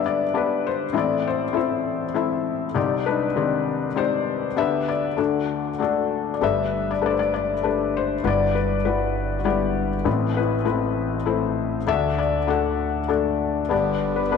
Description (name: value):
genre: acoustic folk-pop ballad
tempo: 99 BPM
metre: 3/4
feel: straight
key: G major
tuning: A4 = 440 Hz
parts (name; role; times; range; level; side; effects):
- felt-muted upright piano; melody; 0.0-14.4 s; G1 to F#5; -21 LUFS; left 7 dB; none
- upright bass; bass; 6.4-14.4 s; G1 to D2; -29 LUFS; right 3 dB; none
- hand-pumped harmonium; sustained chords; 13.7-14.4 s; D3 to B3; -28 LUFS; right 2 dB; none
room: wet echo chamber reverb, RT60 2.3 s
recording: none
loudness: -21 LUFS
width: side -5 dB against mid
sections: 0.0-13.7 A section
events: none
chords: 0.0 G; 0.9 Am; 2.8 Cmadd9; 4.6 G/D; 5.2 D; 6.4 Gadd9; 10.1 Amadd9; 11.9 D; 13.7 G